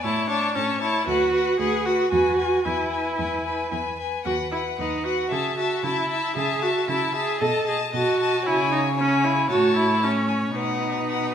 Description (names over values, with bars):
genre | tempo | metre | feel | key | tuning
quick classical-period movement for string quartet | 114 BPM | 4/4 | straight | unclear | A4 = 440 Hz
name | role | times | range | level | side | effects
rich violin | melody | 0.0-11.3 s | F#5 to A5 | -27 LUFS | left 8 dB | none
rich violin | second line | 0.0-11.3 s | B4 to E5 | -30 LUFS | left 3 dB | none
rich viola | accompaniment | 0.0-11.3 s | C#4 to A4 | -23 LUFS | right 2 dB | none
warm cello | bass | 0.0-11.3 s | D2 to C#3 | -29 LUFS | right 2 dB | none
room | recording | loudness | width
wet recital hall reverb, RT60 1.4 s | minimal, uncompressed stereo recording | -20 LUFS | side -8 dB against mid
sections
0.0-11.3 A section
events
none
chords
0.0 A; 1.1 Bm/D; 2.1 E; 4.3 B/D#; 5.3 A/C#; 7.4 B7; 8.5 C#5; 9.5 A; 10.6 B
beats
| 0.04 0.56 1.08 1.60 | 2.12 2.66 3.19 3.72 | 4.25 4.79 5.31 5.83 | 6.36 6.89 7.41 7.93 | 8.46 8.97 9.49 10.02 | 10.56 11.11